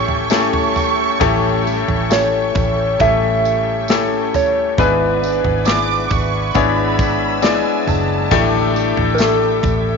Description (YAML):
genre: pop ballad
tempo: 68 BPM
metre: 4/4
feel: straight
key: unclear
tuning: A4 = 445 Hz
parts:
  - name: warm studio violin section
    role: second line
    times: 0.0-8.9 s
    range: G#5 to D6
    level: -22 LUFS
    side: right 12 dB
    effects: none
  - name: clear concert grand piano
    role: accompaniment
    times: 0.0-10.0 s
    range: G#2 to D5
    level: -18 LUFS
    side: left 12 dB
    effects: none
  - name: clear studio string section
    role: sustained chords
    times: 0.0-10.0 s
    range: A4 to E6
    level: -27 LUFS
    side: right 1 dB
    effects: none
  - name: fingerpicked plugged-in steel-string acoustic guitar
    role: arpeggios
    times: 0.0-10.0 s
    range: A2 to B4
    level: -25 LUFS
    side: right 13 dB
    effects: none
  - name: vintage muted fingered electric bass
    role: bass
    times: 0.0-10.0 s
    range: F#1 to A1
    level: -22 LUFS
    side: right 1 dB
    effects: none
  - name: natural country drum kit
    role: drums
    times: 0.1-9.8 s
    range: kick drum, snare drum, toms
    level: -22 LUFS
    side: right 2 dB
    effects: none
  - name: tambourine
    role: percussion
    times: 0.3-9.9 s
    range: none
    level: -34 LUFS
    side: right 15 dB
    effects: none
  - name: soft struck synth lead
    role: melody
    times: 2.1-10.0 s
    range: A4 to E5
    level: -18 LUFS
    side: right 2 dB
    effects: chorus
room: moderate echo chamber reverb, RT60 2.4 s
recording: 1960s-style stereo with parts hard left and right, nothing above 7.5 kHz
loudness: -14 LUFS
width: side -5 dB against mid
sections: 0.0-10.0 A section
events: none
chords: 0.0 A7; 4.8 E7/G#; 8.3 A7sus4